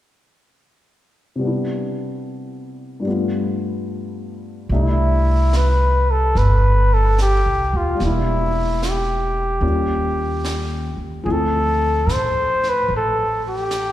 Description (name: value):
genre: jazz ballad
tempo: 73 BPM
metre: 4/4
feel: swing 66% on 8ths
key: C major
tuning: A4 = 440 Hz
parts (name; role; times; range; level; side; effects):
- dark baby grand piano; accompaniment; 1.4-13.9 s; G2 to E5; -25 LUFS; left 2 dB; none
- dark trumpet; melody; 4.7-13.9 s; E4 to C5; -20 LUFS; equal; slapback echo
- upright bass; bass; 4.7-13.9 s; E1 to A2; -19 LUFS; equal; none
- jazz brush drum kit; drums; 4.7-13.9 s; brushed snare drum, hi-hat, snare drum; -34 LUFS; right 1 dB; slapback echo
room: studio reverb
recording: live gig heard through the venue's PA, recital hall reverb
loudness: -17 LUFS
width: side -13 dB against mid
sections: 1.4-4.7 A section; 4.7-13.9 B section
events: none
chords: 1.4 Cmaj9; 3.1 G9; 4.7 C6; 8.0 Em7b5; 9.6 Eb9; 11.3 Dm9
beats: | 1.42 2.24 3.06 3.87 | 4.70 5.52 6.35 7.17 | 7.99 8.81 9.63 10.44 | 11.26 12.07 12.89 13.70